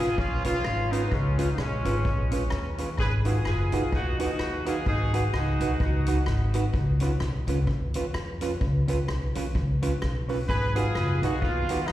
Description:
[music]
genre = ska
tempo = 128 BPM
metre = 4/4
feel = swing 57% on 8ths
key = unclear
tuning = A4 = 441 Hz
[part]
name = warm horn section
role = melody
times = 0.0-6.3, 10.5-11.9 s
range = G#3 to B4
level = -30 LUFS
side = equal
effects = tape echo, plate reverb, slapback echo
[part]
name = hollow-body jazz guitar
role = accompaniment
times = 0.0-11.8 s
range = C#4 to B4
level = -32 LUFS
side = right 3 dB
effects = tape echo, plate reverb, slapback echo
[part]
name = upright bass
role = bass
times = 0.0-11.9 s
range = F#1 to E#2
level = -26 LUFS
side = equal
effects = none
[part]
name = vintage drum kit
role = drums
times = 0.2-11.9 s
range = hi-hat, kick drum, rim click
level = -33 LUFS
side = equal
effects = tape echo
[sound]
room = light reverb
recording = live gig heard through the venue's PA, recital hall reverb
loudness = -24 LUFS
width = side -14 dB against mid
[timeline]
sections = 0.0-11.9 A section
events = none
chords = 0.0 C#7; 3.0 G#m7; 6.7 C#7; 10.5 G#m7

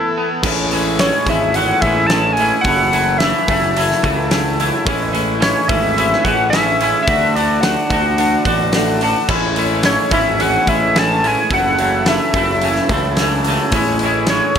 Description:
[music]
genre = indie rock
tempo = 108 BPM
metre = 4/4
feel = straight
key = A major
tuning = A4 = 444 Hz
[part]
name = lead with added fifth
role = melody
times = 0.0-14.6 s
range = A4 to A5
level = -17 LUFS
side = equal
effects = chorus, slapback echo
[part]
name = combo organ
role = sustained chords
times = 0.0-14.6 s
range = D3 to C#5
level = -27 LUFS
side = right 1 dB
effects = none
[part]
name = twangy electric guitar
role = riff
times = 0.0-14.6 s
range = F#2 to F#4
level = -18 LUFS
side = equal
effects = double-tracked left and right
[part]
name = fuzz picked electric bass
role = bass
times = 0.4-14.6 s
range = F#1 to D2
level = -21 LUFS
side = equal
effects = overdrive
[part]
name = big rock drum kit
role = drums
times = 0.4-14.6 s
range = crash cymbal, hi-hat, kick drum, snare drum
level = -20 LUFS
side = equal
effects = none
[sound]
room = light reverb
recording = none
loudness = -13 LUFS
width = side -8 dB against mid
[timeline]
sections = 0.4-14.6 A section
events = break 0.0-0.4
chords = 0.4 Amaj7; 2.7 F#m7; 4.9 Amaj7; 7.1 D; 9.3 Amaj7; 11.5 F#m7; 13.7 Amaj7

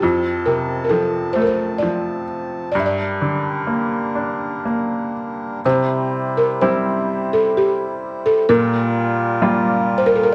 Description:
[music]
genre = celtic folk, Celtic slow air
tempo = 59-68 BPM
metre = 3/4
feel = rubato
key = unclear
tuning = A4 = 440 Hz
[part]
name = buzzing marimba with soft mallets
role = melody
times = 0.0-10.3 s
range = F4 to E5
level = -20 LUFS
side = equal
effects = none
[part]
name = bright upright piano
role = accompaniment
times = 0.0-10.3 s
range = F2 to F4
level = -23 LUFS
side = equal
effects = none
[part]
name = pedal harmonium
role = sustained chords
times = 0.0-10.3 s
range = Bb2 to A5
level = -28 LUFS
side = equal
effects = none
[sound]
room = light reverb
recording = none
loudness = -19 LUFS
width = mono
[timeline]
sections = 0.0-5.6 A section; 5.6-10.3 B section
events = none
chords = 0.0 F; 2.7 Gm; 5.6 C; 8.5 Gm7/Bb

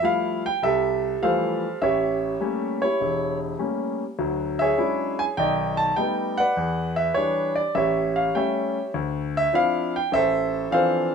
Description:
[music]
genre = solo jazz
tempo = 101 BPM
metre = 4/4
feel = swing 69% on 8ths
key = D minor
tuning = A4 = 440 Hz
[part]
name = warm concert grand piano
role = solo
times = 0.0-11.1 s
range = E1 to A5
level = -21 LUFS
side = equal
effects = none
[sound]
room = moderate studio reverb, RT60 0.6 s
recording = minimal, uncompressed stereo recording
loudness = -21 LUFS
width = side -6 dB against mid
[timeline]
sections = 0.0-11.1 A section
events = none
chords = 0.0 Fmaj9; 1.8 A7b9; 4.2 Dmaj9#11; 5.4 B7alt; 6.6 Em7; 7.7 A7; 8.9 Dm9

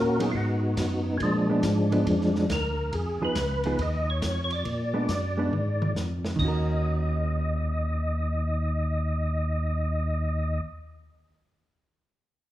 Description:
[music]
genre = soul jazz organ trio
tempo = 139 BPM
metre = 4/4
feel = swing 66% on 8ths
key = Eb minor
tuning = A4 = 440 Hz
[part]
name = percussive tonewheel organ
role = melody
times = 0.0-10.6 s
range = F3 to Eb5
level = -28 LUFS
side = equal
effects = slow rotary speaker, chorus vibrato
[part]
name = tonewheel organ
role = bass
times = 0.0-10.6 s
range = Db2 to Bb2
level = -28 LUFS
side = equal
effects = chorus vibrato, slow rotary speaker
[part]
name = hollow-body jazz guitar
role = accompaniment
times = 0.2-10.9 s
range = Eb3 to Bb4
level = -31 LUFS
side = right 2 dB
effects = none
[part]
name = vintage drum kit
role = drums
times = 0.2-6.5 s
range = crash cymbal, hi-hat, kick drum, ride cymbal, snare drum, toms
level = -35 LUFS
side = equal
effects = none
[sound]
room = moderate recital hall reverb, RT60 1.3 s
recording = recorded in a church or concert hall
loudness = -24 LUFS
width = side -14 dB against mid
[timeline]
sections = 0.0-2.9 A section; 2.9-6.4 B section; 6.4-9.8 C section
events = drum fill 5.5-6.4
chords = 0.3 Abm7; 1.2 Bb7b9; 2.9 Fm7b5; 4.7 Bb7b9; 6.4 Ebm7

